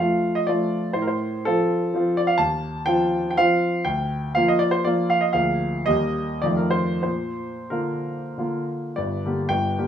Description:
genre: classical, romantic triple-time dance for piano with dotted rhythms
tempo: 84-140 BPM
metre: 3/4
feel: rubato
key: Bb major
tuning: A4 = 438 Hz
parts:
  - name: clear grand piano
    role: solo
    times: 0.0-9.9 s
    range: G1 to A5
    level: -20 LUFS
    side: equal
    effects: none
room: moderate studio reverb, RT60 0.7 s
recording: small room ambience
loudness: -20 LUFS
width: side -9 dB against mid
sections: 0.0-9.0 A section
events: none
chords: 0.0 F; 1.0 F/A; 2.4 F7/Eb; 3.9 Bb/D; 5.3 Bb7/D; 5.9 Eb; 6.4 F7; 7.0 Bb; 9.0 Gm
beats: 0.50 | 0.96 1.45 1.95 | 2.40 2.87 3.37 | 3.85 4.35 4.84 | 5.35 5.87 6.44 | 7.04 7.72 8.38 | 8.97 9.50

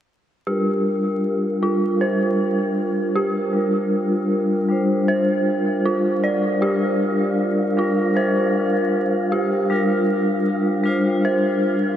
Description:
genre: trip hop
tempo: 78 BPM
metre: 4/4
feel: swing 55% on 16ths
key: G minor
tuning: A4 = 443 Hz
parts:
  - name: vibraphone with medium hard mallets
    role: accompaniment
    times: 0.5-12.0 s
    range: G3 to C5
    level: -19 LUFS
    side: equal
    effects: harmonic tremolo, vintage 12-bit sampler grit, low-pass filter, tape echo
  - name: dark detuned synth bell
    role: arpeggios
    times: 0.5-12.0 s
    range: F4 to D5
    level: -24 LUFS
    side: right 1 dB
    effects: chorus, low-pass filter, diffuse ambient delay
  - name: wind-like tuned noise texture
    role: texture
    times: 1.3-12.0 s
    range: F4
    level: -31 LUFS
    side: right 1 dB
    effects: built-in reverb, analog chorus
room: wet huge ambient reverb, RT60 4.9 s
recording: dreamy mix soaked in reverb, vinyl crackle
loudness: -18 LUFS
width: side -10 dB against mid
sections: 0.5-12.0 A section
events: filter sweep on vibraphone 0.5-12.0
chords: 0.5 Gm7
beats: | 0.47 1.24 2.01 2.78 | 3.55 4.32 5.08 5.85 | 6.62 7.39 8.16 8.93 | 9.70 10.47 11.24

